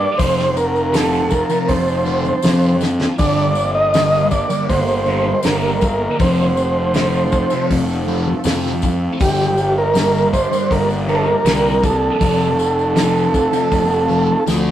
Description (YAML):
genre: psychedelic rock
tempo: 80 BPM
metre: 4/4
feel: straight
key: unclear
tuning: A4 = 440 Hz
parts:
  - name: combo organ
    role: melody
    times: 0.0-14.4 s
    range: G4 to Eb5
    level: -17 LUFS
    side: right 2 dB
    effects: none
  - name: soft string machine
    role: sustained chords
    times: 0.0-14.7 s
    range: D3 to A5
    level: -26 LUFS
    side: right 1 dB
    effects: ensemble chorus
  - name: fuzz picked electric bass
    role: bass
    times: 0.0-14.7 s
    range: F1 to F2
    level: -20 LUFS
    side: left 1 dB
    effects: overdrive
  - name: thick fuzz guitar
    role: riff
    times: 0.2-14.7 s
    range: F2 to G3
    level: -21 LUFS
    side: left 1 dB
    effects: distortion, phaser
  - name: damped 70s drum kit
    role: drums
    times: 0.2-14.7 s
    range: hi-hat, kick drum, snare drum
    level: -21 LUFS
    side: equal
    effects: none
  - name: tambourine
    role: percussion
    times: 0.2-14.7 s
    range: none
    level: -36 LUFS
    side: left 7 dB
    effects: none
room: wet studio reverb, RT60 0.6 s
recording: rough rehearsal-room recording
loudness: -14 LUFS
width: side -11 dB against mid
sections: 0.0-14.7 A section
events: drum fill 2.8-3.2, 14.5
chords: 0.2 F; 3.2 Gm; 6.2 F; 9.2 Gm; 12.2 F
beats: | 0.19 0.94 1.69 2.44 | 3.19 3.94 4.69 5.44 | 6.19 6.94 7.70 8.45 | 9.20 9.95 10.71 11.46 | 12.21 12.97 13.72 14.47